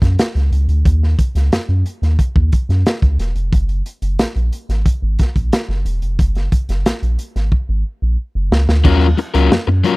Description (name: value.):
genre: funk.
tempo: 90 BPM.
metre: 4/4.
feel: straight.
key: Eb minor.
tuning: A4 = 441 Hz.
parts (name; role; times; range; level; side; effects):
round analog bass; bass; 0.0-9.8 s; Fb1 to Gb2; -15 LUFS; equal; none.
crunchy breakbeat drum kit; drums; 0.0-10.0 s; crash cymbal, hi-hat, kick drum, snare drum; -16 LUFS; equal; none.
crunchy overdriven guitar; accompaniment; 8.8-10.0 s; Gb3 to Bb4; -15 LUFS; left 6 dB; none.
room: studio reverb.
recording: dry, close 1970s-style studio recording.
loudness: -14 LUFS.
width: side -23 dB against mid.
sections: 0.0-8.8 A section; 8.8-10.0 B section.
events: drum fill 7.5-8.8.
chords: 0.0 Ebm7; 3.5 Gb; 8.8 Ebm9.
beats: 0.18 | 0.85 1.52 2.19 2.85 | 3.52 4.19 4.86 5.52 | 6.19 6.86 7.52 8.18 | 8.85 9.51.